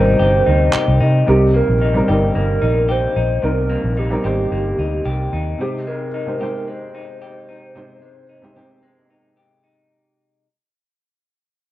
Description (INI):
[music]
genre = indie pop, bedroom pop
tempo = 111 BPM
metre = 4/4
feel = straight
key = C minor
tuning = A4 = 439 Hz
[part]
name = warbly nostalgic lead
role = melody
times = 0.0-9.4 s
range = G4 to C5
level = -21 LUFS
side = right 1 dB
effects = wide subtle chorus, tape echo
[part]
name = dark upright piano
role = accompaniment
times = 0.0-9.9 s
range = C3 to C5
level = -23 LUFS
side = right 1 dB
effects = cassette tape
[part]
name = electric guitar through a small old amp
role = accompaniment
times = 0.0-10.5 s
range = C3 to G4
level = -23 LUFS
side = left 2 dB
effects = wide subtle chorus, warbly pitch drift
[part]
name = vintage muted fingered electric bass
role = bass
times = 0.0-5.5 s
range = G1 to C3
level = -18 LUFS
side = equal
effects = none
[part]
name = group handclap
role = percussion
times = 0.7-0.9 s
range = none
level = -22 LUFS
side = right 2 dB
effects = none
[sound]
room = moderate small room reverb, RT60 0.6 s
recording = worn, warbling old tape, cassette tape, warbly pitch drift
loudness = -15 LUFS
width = side -15 dB against mid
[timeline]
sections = 0.0-1.3 A section; 1.3-9.9 B section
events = fade-out 1.3-9.9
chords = 0.0 Cm7; 5.6 Abmaj7/C